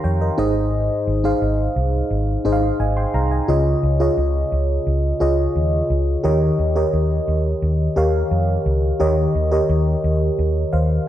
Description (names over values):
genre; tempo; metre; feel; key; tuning
1980s-style pop; 87 BPM; 4/4; straight; Eb mixolydian; A4 = 440 Hz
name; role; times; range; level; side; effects
mellow FM electric piano; accompaniment; 0.0-11.1 s; Ab2 to C6; -19 LUFS; equal; chorus
vintage muted fingered electric bass; bass; 0.0-11.0 s; Ab1 to F2; -20 LUFS; equal; none
room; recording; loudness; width
moderate lush hall reverb, RT60 2.4 s; dark, warm production; -17 LUFS; side -12 dB against mid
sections
0.0-11.1 A section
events
none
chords
0.4 Ab; 3.5 Dbadd9; 6.2 Eb7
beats
0.04 | 0.73 1.42 2.11 2.80 | 3.49 4.18 4.87 5.56 | 6.25 6.93 7.62 8.31 | 9.00 9.69 10.38 11.07